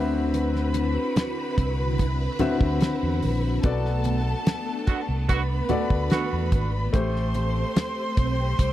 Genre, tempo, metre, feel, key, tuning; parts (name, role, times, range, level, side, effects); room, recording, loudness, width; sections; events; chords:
lush 1970s-style soul; 73 BPM; 4/4; straight; A4 = 441 Hz
warm studio string section; second line; 0.0-8.7 s; A4 to C6; -32 LUFS; equal
warm grand piano; accompaniment; 0.0-8.7 s; D3 to E5; -28 LUFS; left 4 dB
phased string machine; sustained chords; 0.0-8.7 s; D3 to B4; -33 LUFS; right 2 dB; ensemble chorus, phaser
fingered electric bass; bass; 0.0-8.7 s; G#1 to E2; -26 LUFS; equal
damped 70s drum kit; drums; 0.3-8.7 s; hi-hat, kick drum, snare drum; -23 LUFS; equal
congas; percussion; 0.3-8.7 s; -33 LUFS; right 3 dB
warm horn section; stabs; 4.9-6.7 s; D3 to F#4; -29 LUFS; right 6 dB
studio reverb; dry, close 1970s-style studio recording; -22 LUFS; side -13 dB against mid
0.0-8.7 A section
band accent 3.6-6.9
0.0 D13; 3.6 Bm7; 6.9 Am9